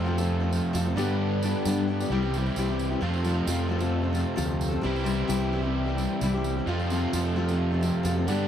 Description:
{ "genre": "folk rock and heartland rock", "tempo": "132 BPM", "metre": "4/4", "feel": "straight", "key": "unclear", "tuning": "A4 = 440 Hz", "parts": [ { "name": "picked steel-string acoustic guitar", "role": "accompaniment", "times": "0.0-8.5 s", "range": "G2 to A4", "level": "-29 LUFS", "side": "left 5 dB", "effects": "none" }, { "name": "tonewheel organ", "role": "sustained chords", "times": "0.0-8.5 s", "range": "B3 to C5", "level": "-40 LUFS", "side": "right 2 dB", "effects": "none" }, { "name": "crunchy overdriven guitar", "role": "riff", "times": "0.0-8.5 s", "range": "F2 to G4", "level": "-29 LUFS", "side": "right 2 dB", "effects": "none" }, { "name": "fingered electric bass", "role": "bass", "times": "0.0-8.5 s", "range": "C2 to G2", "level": "-29 LUFS", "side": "right 1 dB", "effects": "none" }, { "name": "tambourine", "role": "percussion", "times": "0.2-8.4 s", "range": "none", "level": "-41 LUFS", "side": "right 7 dB", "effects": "none" } ], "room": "light reverb", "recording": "dark, warm production", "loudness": "-24 LUFS", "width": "side -9 dB against mid", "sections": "0.0-8.5 A section", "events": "none", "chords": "0.0 F; 1.0 G; 2.1 C; 3.0 F; 4.9 C; 6.7 F", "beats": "0.29 0.75 | 1.20 1.66 2.11 2.57 | 3.02 3.48 3.94 4.39 | 4.85 5.31 5.76 6.22 | 6.68 7.13 7.59 8.05" }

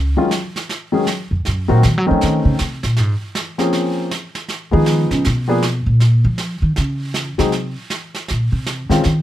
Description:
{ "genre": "jazz piano trio", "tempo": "158 BPM", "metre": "4/4", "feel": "swing 64% on 8ths", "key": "unclear", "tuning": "A4 = 439 Hz", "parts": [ { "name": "upright bass", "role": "bass", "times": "0.0-9.2 s", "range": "C#2 to Gb3", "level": "-16 LUFS", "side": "equal", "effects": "none" }, { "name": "warm baby grand piano", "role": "melody", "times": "0.2-9.0 s", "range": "Eb3 to Ab4", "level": "-18 LUFS", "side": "left 2 dB", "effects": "none" }, { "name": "snare drum and brushed snare drum", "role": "drums", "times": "0.3-9.2 s", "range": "none", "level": "-26 LUFS", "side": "right 3 dB", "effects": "none" } ], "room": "light reverb", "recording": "none", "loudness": "-15 LUFS", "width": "side -13 dB against mid", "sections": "0.0-6.0 A section; 6.0-9.2 A section", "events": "upright bass solo 0.0-9.2", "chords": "0.0 Eb9sus4 (rootless); 1.4 Cm7b5; 2.2 Bbmadd11; 3.0 Bbm9; 4.5 Fm7b5; 5.2 Bb5; 6.0 Eb7(no3) (rootless); 7.5 N.C.", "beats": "0.30 0.68 1.06 | 1.44 1.82 2.20 2.58 | 2.96 3.34 3.72 4.10 | 4.48 4.86 5.24 5.62 | 6.00 6.38 6.76 7.14 | 7.52 7.90 8.28 8.66 | 9.04" }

